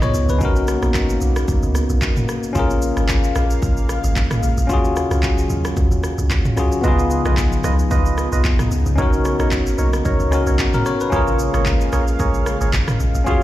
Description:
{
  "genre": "amapiano",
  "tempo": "112 BPM",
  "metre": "4/4",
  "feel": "swing 55% on 16ths",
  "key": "unclear",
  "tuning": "A4 = 440 Hz",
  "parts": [
    { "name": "bell-like tine electric piano", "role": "accompaniment", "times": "0.0-13.4 s", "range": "Cb4 to Eb5", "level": "-22 LUFS", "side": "left 3 dB", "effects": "none" },
    { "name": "warm analog pad", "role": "sustained chords", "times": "0.0-13.4 s", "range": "C#3 to F5", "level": "-27 LUFS", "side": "left 1 dB", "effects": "chorus, sidechain pumping" },
    { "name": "deep log drum bass", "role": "bass", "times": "0.0-13.4 s", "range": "Ab1 to Eb2", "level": "-19 LUFS", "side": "equal", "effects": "none" },
    { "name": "deep house drum kit", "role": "drums", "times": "0.0-13.4 s", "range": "handclaps, kick drum, rim click, shaker, toms", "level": "-21 LUFS", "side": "equal", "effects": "none" },
    { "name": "percussive organ stab", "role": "stabs", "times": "6.8-13.4 s", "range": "D#4 to F5", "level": "-25 LUFS", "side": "right 4 dB", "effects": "chorus, tape echo" }
  ],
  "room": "light reverb, digital ambience",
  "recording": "played on a big sound system in a bare room, large studio reverb",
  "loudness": "-16 LUFS",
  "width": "side -14 dB against mid",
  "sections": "0.0-13.4 A section",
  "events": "none",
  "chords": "0.4 Bmaj9; 2.6 Bbm7; 4.7 Ebm11; 6.8 Db9; 9.0 Bmaj9; 11.1 Bbm7"
}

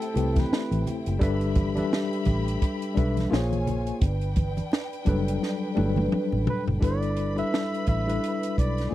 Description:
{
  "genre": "lush 1970s-style soul",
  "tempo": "86 BPM",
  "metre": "4/4",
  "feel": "swing 58% on 16ths",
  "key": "G major",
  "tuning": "A4 = 440 Hz",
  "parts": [
    { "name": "warm flugelhorn", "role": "melody", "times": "0.0-0.9, 6.5-8.9 s", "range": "A4 to E5", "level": "-32 LUFS", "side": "right 2 dB", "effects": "none" },
    { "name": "warm studio string section", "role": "second line", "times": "0.0-8.9 s", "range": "C4 to B5", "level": "-36 LUFS", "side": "equal", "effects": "none" },
    { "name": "tine electric piano", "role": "accompaniment", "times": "0.0-8.9 s", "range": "F#3 to E5", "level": "-28 LUFS", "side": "left 3 dB", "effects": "overdrive, fast stereo tremolo" },
    { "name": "compact cocktail drum kit", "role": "drums", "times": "0.0-8.9 s", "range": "hi-hat, kick drum, snare drum, toms", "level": "-26 LUFS", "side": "equal", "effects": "none" },
    { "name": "vintage muted fingered electric bass", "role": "bass", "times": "0.2-8.9 s", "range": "F#1 to C2", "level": "-27 LUFS", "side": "equal", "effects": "none" },
    { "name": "congas", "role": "percussion", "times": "0.2-6.7 s", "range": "none", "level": "-33 LUFS", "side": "right 3 dB", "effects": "none" }
  ],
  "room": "little or no reverb",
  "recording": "dry, close 1970s-style studio recording",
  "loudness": "-23 LUFS",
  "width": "side -14 dB against mid",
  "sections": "0.0-6.8 A section; 6.8-8.9 B section",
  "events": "drum fill 5.4-6.8",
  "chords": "0.0 Am9; 1.2 G6; 3.3 Bbm9; 4.0 Gmaj7; 6.8 G6"
}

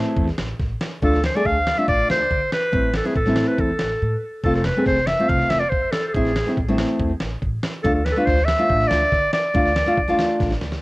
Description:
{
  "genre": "klezmer",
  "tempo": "141 BPM",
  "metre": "4/4",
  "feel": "straight",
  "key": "D dorian sharp4",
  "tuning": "A4 = 439 Hz",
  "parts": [
    { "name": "nylon-string guitar", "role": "accompaniment", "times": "0.0-10.5 s", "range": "A3 to G#4", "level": "-22 LUFS", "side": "equal", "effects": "cassette tape" },
    { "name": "upright bass", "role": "bass", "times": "0.2-10.7 s", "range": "F1 to D3", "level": "-25 LUFS", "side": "equal", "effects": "none" },
    { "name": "lo-fi sampler-style drum kit", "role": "drums", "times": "0.2-10.8 s", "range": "kick drum, snare drum", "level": "-25 LUFS", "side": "equal", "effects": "cassette tape" },
    { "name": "clear clarinet", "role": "melody", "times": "1.0-10.8 s", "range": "G#4 to F5", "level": "-21 LUFS", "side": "equal", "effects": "cassette tape, tape echo" }
  ],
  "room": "moderate booth ambience, RT60 0.2 s",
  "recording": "home recording on cassette",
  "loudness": "-18 LUFS",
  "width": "side -22 dB against mid",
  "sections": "0.0-10.8 A section",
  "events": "break 4.0-4.4; drum fill 10.4-10.8",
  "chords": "0.0 Am; 1.0 Dm; 2.7 Am; 4.4 F; 6.1 Am; 7.8 Dm"
}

